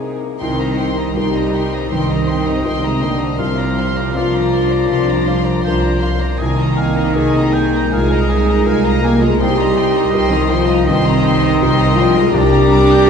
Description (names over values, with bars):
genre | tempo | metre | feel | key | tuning
cinematic | 81 BPM | 4/4 | rubato | C minor | A4 = 440 Hz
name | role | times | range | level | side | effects
warm symphonic violin section | second line | 0.0-13.1 s | Bb3 to G6 | -25 LUFS | left 2 dB | none
felt-muted upright piano | accompaniment | 0.0-13.1 s | C2 to Eb5 | -23 LUFS | left 1 dB | none
concert harp | arpeggios | 0.0-13.1 s | C3 to G5 | -24 LUFS | left 6 dB | none
warm symphonic cello section | bass | 0.0-13.1 s | C3 to Bb3 | -20 LUFS | right 3 dB | none
warm symphonic violin section | melody | 0.4-13.1 s | Ab5 to C6 | -26 LUFS | left 2 dB | none
dark symphonic viola section | accompaniment | 0.4-13.1 s | F3 to G4 | -23 LUFS | right 1 dB | none
mellow French horn section | sustained chords | 0.4-13.1 s | C4 to Bb4 | -19 LUFS | left 2 dB | none
warm symphonic double bass section | bass | 0.4-12.9 s | C2 | -19 LUFS | right 1 dB | none
clear oboe | second line | 1.9-13.1 s | C5 to G5 | -25 LUFS | left 1 dB | none
room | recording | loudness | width
wet scoring stage reverb, RT60 2.0 s | heard from further back in the room, nothing above 10.9 kHz | -13 LUFS | side -6 dB against mid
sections
0.4-13.1 A section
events
none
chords
0.4 Cm7; 3.4 Bbadd9/C; 6.4 Absus2/C; 9.4 Cm7; 12.3 Gm/C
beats
| 0.40 1.16 1.90 2.65 | 3.39 4.16 4.91 5.65 | 6.40 7.15 7.93 8.66 | 9.40 10.13 10.87 11.62 | 12.34 13.07